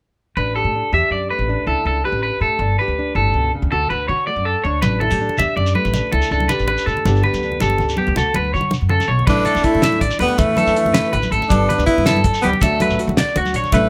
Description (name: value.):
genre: highlife guitar band.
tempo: 108 BPM (dotted quarters).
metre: 12/8.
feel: straight.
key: A mixolydian.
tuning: A4 = 440 Hz.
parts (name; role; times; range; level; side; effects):
nylon-string guitar; accompaniment; 0.4-13.9 s; G2 to G4; -29 LUFS; equal; none.
electric guitar at the edge of break-up; arpeggios; 0.4-13.9 s; F#4 to E5; -22 LUFS; equal; slapback echo.
upright bass; bass; 0.4-13.9 s; F#1 to D3; -24 LUFS; equal; none.
congas; percussion; 4.8-13.8 s; none; -26 LUFS; equal; none.
shekere; percussion; 4.8-13.8 s; none; -30 LUFS; equal; none.
breathy tenor saxophone; melody; 9.3-13.9 s; A3 to E4; -20 LUFS; equal; none.
bright trombone; second line; 9.3-13.9 s; E3 to B3; -30 LUFS; equal; none.
cloth-damped thuddy drum kit; drums; 9.3-13.8 s; crash cymbal, hi-hat, kick drum, snare drum; -24 LUFS; equal; none.
room: little or no reverb.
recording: none.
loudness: -18 LUFS.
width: mono.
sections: 0.4-9.3 A section; 9.3-13.9 B section.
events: none.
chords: 0.4 Asus4; 2.6 Gadd9; 3.7 D; 4.8 Asus4; 7.1 Gadd9; 8.2 D; 9.3 Asus4; 11.5 Gadd9; 12.6 D.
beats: | 0.37 0.92 1.48 2.04 | 2.60 3.15 3.71 4.27 | 4.82 5.38 5.94 6.50 | 7.05 7.61 8.16 8.72 | 9.28 9.84 10.39 10.95 | 11.50 12.06 12.61 13.17 | 13.72.